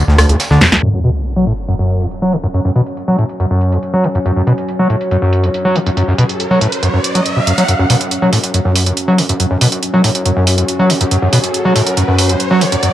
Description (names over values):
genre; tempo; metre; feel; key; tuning
driving peak-time techno; 140 BPM; 4/4; straight; unclear; A4 = 440 Hz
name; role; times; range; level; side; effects
overdriven acid bass; riff; 0.0-12.9 s; B#1 to F#3; -13 LUFS; equal; distortion, lush chorus, analog delay
gritty driven synth bass; bass; 0.1-0.8, 7.8-12.8 s; F#1 to F#2; -20 LUFS; equal; distortion, high-pass filter
snare drum and tambourine; drums; 0.1-7.6 s; none; -28 LUFS; right 1 dB; none
techno drum kit; drums; 0.2-12.9 s; hi-hat, rim click, snare drum; -16 LUFS; right 2 dB; none
analog drone; drone; 2.4-12.9 s; F#3 to C#4; -21 LUFS; left 1 dB; chorus
sub drop and riser; sound effects; 0.8-12.9 s; none; -22 LUFS; right 1 dB; none
room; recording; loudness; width
light reverb; dry, gritty hardware recording, cassette tape, low-pass filter; -11 LUFS; side -12 dB against mid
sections
0.8-7.7 A section; 7.7-12.9 B section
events
drum fill 0.6; band accent 0.7; impact 0.8-2.5; filter sweep 0.8-7.7; riser 5.5-7.7, 7.7-12.9; build-up 7.7-12.9; filter sweep on acid bass 7.7-12.9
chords
0.0 N.C.; 0.8 F#5